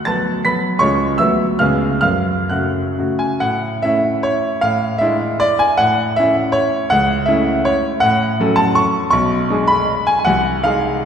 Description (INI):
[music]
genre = classical, romantic triple-time dance for piano with dotted rhythms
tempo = 121-174 BPM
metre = 3/4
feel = rubato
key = F# minor, A major from 3.4 s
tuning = A4 = 441 Hz
[part]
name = clear grand piano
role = solo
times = 0.0-11.1 s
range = B1 to B6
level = -14 LUFS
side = equal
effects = none
[sound]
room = wet church reverb, RT60 2.7 s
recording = recorded in a church or concert hall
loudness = -14 LUFS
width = side -8 dB against mid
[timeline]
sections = 0.0-3.4 A section; 3.4-11.1 B section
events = none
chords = 0.0 Bm/D; 0.8 C#; 1.2 Bm/D; 1.6 C#7; 2.0 F#m; 3.4 A; 4.6 E7b9/A; 5.8 A; 6.9 A/C#; 8.0 F#m/A; 9.1 G#dim/B; 10.3 G#7/B#